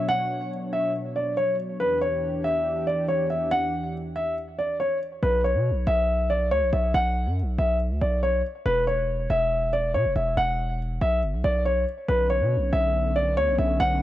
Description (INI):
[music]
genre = hip hop, drill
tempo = 140 BPM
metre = 4/4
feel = half-time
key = B minor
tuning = A4 = 437 Hz
[part]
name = dark grand piano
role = melody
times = 0.0-14.0 s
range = B4 to F#5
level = -24 LUFS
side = equal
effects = none
[part]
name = warm analog pad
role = sustained chords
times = 0.0-5.2, 12.1-14.0 s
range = E2 to C#5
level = -31 LUFS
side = equal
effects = chorus
[part]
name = distorted 808-style bass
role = bass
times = 5.2-14.0 s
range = E1 to B2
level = -25 LUFS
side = equal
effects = distortion
[sound]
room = studio ambience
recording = dry, gritty hardware recording, cassette tape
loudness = -22 LUFS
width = side -13 dB against mid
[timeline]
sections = 0.0-5.2 A section; 5.2-14.0 B section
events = none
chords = 0.0 Bmadd9; 1.8 Em7; 5.2 Bsus2; 8.7 E5; 12.1 Bmadd9